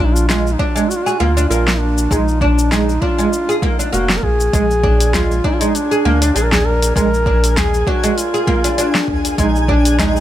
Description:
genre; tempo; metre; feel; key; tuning
organic downtempo; 99 BPM; 4/4; swing 55% on 16ths; unclear; A4 = 439 Hz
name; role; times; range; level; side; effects
mellow duduk; melody; 0.0-10.2 s; D4 to Bb4; -19 LUFS; equal; digital delay
oud; arpeggios; 0.0-10.2 s; Ab3 to Ab4; -19 LUFS; right 1 dB; ping-pong delay
warm sub bass; bass; 0.0-10.2 s; F1 to D2; -17 LUFS; equal; none
deep house drum kit; drums; 0.2-10.2 s; hi-hat, shaker, snare drum; -20 LUFS; left 1 dB; none
electronic kick drum; drums; 0.6-9.8 s; none; -19 LUFS; equal; none
twinkling granular texture; texture; 5.3-10.2 s; Ab4 to Ab5; -28 LUFS; equal; built-in reverb
udu; percussion; 5.1-10.1 s; none; -25 LUFS; left 1 dB; none
room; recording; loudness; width
light reverb, small room ambience; none; -13 LUFS; side -12 dB against mid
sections
0.0-10.2 A section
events
none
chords
0.0 Bb7

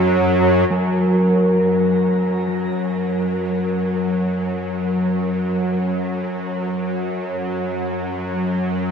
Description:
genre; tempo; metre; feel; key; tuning
dark ambient drone; free time; none; none; unclear; A4 = 436 Hz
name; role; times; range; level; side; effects
dark analog pad; sustained chords; 0.0-0.7 s; none; barely audible; none; none
bowed-like drone; drone; 0.0-8.9 s; F#2 to F#3; -21 LUFS; equal; built-in reverb
bronze singing bowl; arpeggios; 0.7-7.7 s; F#3; -20 LUFS; left 1 dB; diffuse ambient delay, shimmer reverb
room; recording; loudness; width
wet huge ambient reverb, RT60 8.3 s; none; -18 LUFS; side -6 dB against mid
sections
0.7-8.9 A section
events
none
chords
0.0 F#5

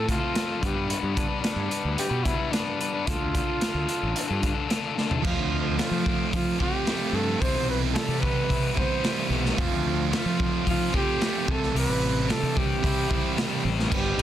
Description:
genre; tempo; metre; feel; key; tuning
indie rock; 110 BPM; 4/4; straight; unclear; A4 = 440 Hz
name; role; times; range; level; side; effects
warm flugelhorn; melody; 0.0-14.2 s; D4 to C5; -30 LUFS; right 1 dB; plate reverb
overdriven electric guitar; riff; 0.0-14.2 s; F2 to B4; -30 LUFS; left 8 dB; none
fuzz fingered electric bass; bass; 0.0-14.2 s; G1 to F3; -29 LUFS; equal; overdrive
raw garage drum kit; drums; 0.1-14.2 s; crash cymbal, hi-hat, kick drum, ride cymbal, snare drum, toms; -28 LUFS; equal; none
sludgy distorted guitar; riff; 5.2-14.2 s; G2 to F4; -30 LUFS; right 10 dB; overdrive, wide subtle chorus, tape echo
room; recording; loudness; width
light reverb; dense, heavily limited modern master; -23 LUFS; side -11 dB against mid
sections
0.0-5.2 A section; 5.2-13.9 B section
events
drum fill 5.0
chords
0.0 F; 0.6 G; 3.1 Dm; 5.2 F; 7.4 Cmaj7; 9.6 F; 11.5 C

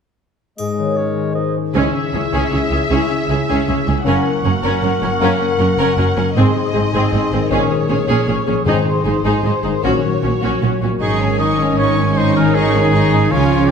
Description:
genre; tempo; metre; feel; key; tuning
cinematic, heroic adventure film score; 156 BPM; 3/4; straight; Ab mixolydian; A4 = 440 Hz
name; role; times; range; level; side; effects
mellow clarinet; second line; 0.6-11.0 s; Gb4 to Bb4; -24 LUFS; left 2 dB; none
mellow large flute ensemble; second line; 0.6-11.0 s; C5 to Fb6; -26 LUFS; right 1 dB; none
warm oboe; second line; 0.6-1.6, 11.0-13.7 s; Ab4 to Eb5; -20 LUFS; right 2 dB; none
warm French horn section; sustained chords; 0.6-10.0 s; Gb3 to Fb4; -25 LUFS; left 3 dB; none
concert harp; arpeggios; 0.6-13.7 s; Gb2 to Eb5; -21 LUFS; left 8 dB; none
triangle; percussion; 0.6-1.3 s; none; -40 LUFS; left 2 dB; none
warm symphonic violin section; melody; 1.8-13.7 s; C5 to Db6; -25 LUFS; left 4 dB; none
clear symphonic violin section; second line; 1.8-13.7 s; Db4 to F5; -25 LUFS; left 1 dB; none
rich symphonic viola section; accompaniment; 1.8-13.7 s; C4 to F4; -22 LUFS; right 2 dB; none
rich studio double bass section; bass; 1.8-13.7 s; Gb1 to Db2; -22 LUFS; right 4 dB; none
rich symphonic cello section; bass; 1.8-13.7 s; Db2 to Db3; -21 LUFS; right 4 dB; none
timpani; percussion; 8.7-9.2 s; Ab2; -24 LUFS; left 1 dB; none
dark trombone section; sustained chords; 11.0-13.7 s; Eb3 to Db4; -20 LUFS; right 3 dB; none
room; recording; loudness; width
wet scoring stage reverb, RT60 1.7 s; none; -14 LUFS; side -6 dB against mid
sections
0.6-1.8 A section; 1.8-11.0 B section; 11.0-13.7 C section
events
build-up 1.8-11.0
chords
0.6 Absus4; 1.8 Dbm; 4.1 Gb; 6.4 Ab; 7.5 Bbm7; 8.7 Ab; 9.8 Gb/Bb; 11.0 Absus4

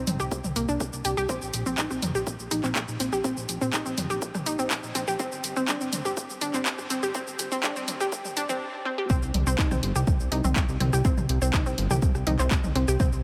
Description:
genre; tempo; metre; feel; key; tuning
melodic techno; 123 BPM; 4/4; straight; C minor; A4 = 439 Hz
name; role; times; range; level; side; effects
fat analog bass; bass; 0.0-13.2 s; G1 to F2; -32 LUFS; equal; sidechain pumping
house drum kit; drums; 0.1-13.2 s; handclaps, hi-hat, rim click, shaker, toms; -33 LUFS; equal; overdrive, small room ambience
analog pluck; arpeggios; 0.2-13.1 s; Bb3 to G5; -31 LUFS; equal; chorus, sidechain pumping, delay
electronic kick drum; drums; 0.3-13.1 s; none; -28 LUFS; equal; overdrive, high-pass filter on kick, small room ambience
room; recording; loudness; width
moderate huge ambient reverb, RT60 3.8 s; high-pass filter; -27 LUFS; mono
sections
0.0-9.1 A section; 9.1-13.2 B section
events
build-up 0.0-9.1; drop 9.1-13.2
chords
0.0 Csus2; 1.3 Bbsus4; 5.2 G5; 9.1 Cm

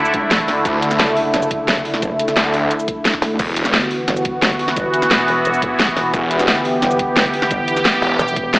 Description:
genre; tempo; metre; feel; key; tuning
dark technical drum and bass; 175 BPM; 4/4; straight; E minor; A4 = 439 Hz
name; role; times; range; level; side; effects
sweeping resonant pad; sustained chords; 0.0-8.6 s; D3 to G4; -17 LUFS; equal; chorus, sidechain pumping
metallic wobble bass; bass; 0.0-8.5 s; E1 to D2; -26 LUFS; equal; distortion, chorus
dubstep drum kit; drums; 0.1-8.6 s; crash cymbal, hi-hat, shaker, snare drum; -18 LUFS; equal; none
electronic kick drum; drums; 0.1-8.4 s; none; -28 LUFS; equal; none
snarling distorted saw bass; bass; 0.7-3.7, 6.1-8.6 s; E1 to D2; -20 LUFS; equal; distortion, overdrive
room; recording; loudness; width
wet lush hall reverb, RT60 1.7 s, digital ambience; dreamy mix soaked in reverb, AM radio sound; -14 LUFS; side -22 dB against mid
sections
0.0-8.6 A section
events
none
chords
0.0 D; 3.4 Em

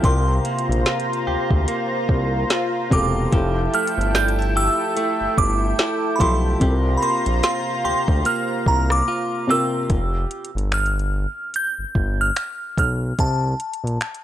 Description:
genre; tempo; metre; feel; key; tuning
contemporary R&B; 73 BPM; 4/4; swing 58% on 16ths; F major; A4 = 441 Hz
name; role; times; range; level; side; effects
glassy synth bell; melody; 0.0-14.0 s; A5 to G6; -24 LUFS; right 1 dB; chorus
felt-muted upright piano; accompaniment; 0.0-9.9 s; C3 to Bb4; -28 LUFS; left 1 dB; none
lush unison pad; sustained chords; 0.0-9.9 s; E4 to Bb5; -26 LUFS; equal; chorus, sidechain pumping
direct-recorded clean electric guitar; arpeggios; 0.0-10.5 s; C3 to G4; -28 LUFS; right 2 dB; analog delay
smooth gliding synth bass; bass; 0.0-14.0 s; E1 to D2; -22 LUFS; equal; none
smooth R&B drum kit; drums; 0.0-14.2 s; finger snaps, hi-hat, kick drum, rim click, snare drum; -21 LUFS; equal; none
room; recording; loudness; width
little or no reverb; dry, gritty hardware recording, transformer saturation; -18 LUFS; side -12 dB against mid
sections
0.0-9.9 A section; 9.9-14.2 B section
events
silent gap 9.1-9.9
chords
0.0 C7sus4; 3.3 Fmaj9; 6.6 C7sus4; 9.9 Fsus2; 13.2 Bbmaj7sus2

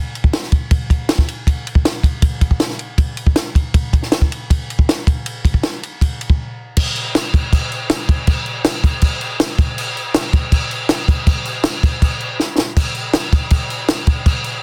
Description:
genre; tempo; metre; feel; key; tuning
rock; 160 BPM; 4/4; straight; none; none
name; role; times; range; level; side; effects
compact cocktail drum kit; drums; 0.2-14.5 s; crash cymbal, kick drum, ride cymbal, snare drum; -17 LUFS; equal; soft clipping on snare
room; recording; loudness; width
little or no reverb; dense, heavily limited modern master; -17 LUFS; mono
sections
0.0-6.8 A section; 6.8-14.6 B section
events
break 6.4-6.8; drum fill 12.4-12.8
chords
none

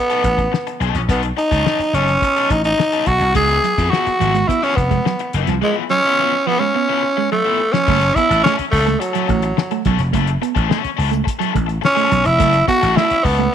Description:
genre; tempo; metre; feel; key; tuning
funk; 106 BPM; 4/4; straight; F# dorian; A4 = 440 Hz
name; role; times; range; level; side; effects
growling tenor saxophone; melody; 0.0-13.5 s; F#3 to G#4; -16 LUFS; right 1 dB; none
biting overdriven guitar; accompaniment; 0.1-13.4 s; E#3 to A4; -24 LUFS; left 14 dB; none
cloth-damped thuddy drum kit; drums; 0.1-13.5 s; crash cymbal, hi-hat, kick drum, snare drum; -22 LUFS; left 3 dB; none
vintage slap bass; bass; 0.2-13.5 s; E#1 to E#2; -19 LUFS; equal; none
mellow electric guitar; riff; 3.4-13.5 s; E#3 to B3; -23 LUFS; right 15 dB; none
room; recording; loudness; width
light reverb, small room ambience; 1960s-style stereo with parts hard left and right; -14 LUFS; side -9 dB against mid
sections
0.0-7.9 A section; 7.9-13.5 B section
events
drum fill 7.3-7.9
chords
0.0 B9; 3.4 C#7#9; 7.9 F#m7

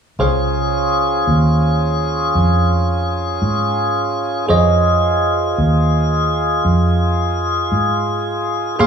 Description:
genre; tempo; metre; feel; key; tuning
slow blues; 56 BPM (dotted quarters); 12/8; straight; unclear; A4 = 440 Hz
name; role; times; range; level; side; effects
bell-like tine electric piano; accompaniment; 0.2-8.9 s; Ab4 to C6; -22 LUFS; right 4 dB; none
tonewheel organ; sustained chords; 0.2-8.9 s; Db4 to Ab4; -18 LUFS; left 1 dB; slow rotary speaker
vintage muted fingered electric bass; bass; 0.2-8.9 s; Db2 to Bb2; -17 LUFS; equal; none
room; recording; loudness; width
wet large studio reverb, RT60 1.3 s; band playing live in one room, studio reverb; -14 LUFS; side -7 dB against mid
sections
0.2-8.8 A section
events
none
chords
0.2 Dbmaj9

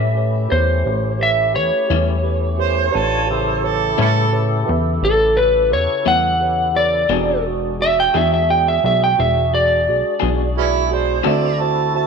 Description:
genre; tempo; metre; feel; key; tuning
slow blues; 58 BPM (dotted quarters); 12/8; straight; A mixolydian; A4 = 440 Hz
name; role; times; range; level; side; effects
electric slide guitar; melody; 0.0-11.6 s; A4 to G5; -17 LUFS; equal; none
electric guitar through a small old amp; accompaniment; 0.0-11.5 s; A2 to A4; -24 LUFS; left 14 dB; tremolo
mellow tine electric piano; accompaniment; 0.0-12.1 s; F#4 to E5; -24 LUFS; right 12 dB; none
tonewheel organ; sustained chords; 0.0-12.1 s; C#3 to G#5; -27 LUFS; left 2 dB; overdrive, chorus vibrato, slow rotary speaker
plucky analog bass; bass; 0.0-12.1 s; E1 to A2; -21 LUFS; left 2 dB; none
mellow harmonica; second line; 2.6-12.1 s; B3 to A5; -20 LUFS; right 8 dB; overdrive
room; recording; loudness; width
moderate echo chamber reverb, RT60 1.9 s; 1960s-style stereo with parts hard left and right; -15 LUFS; side -5 dB against mid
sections
0.0-12.1 A section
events
none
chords
0.0 A7; 7.1 E7; 11.2 D7

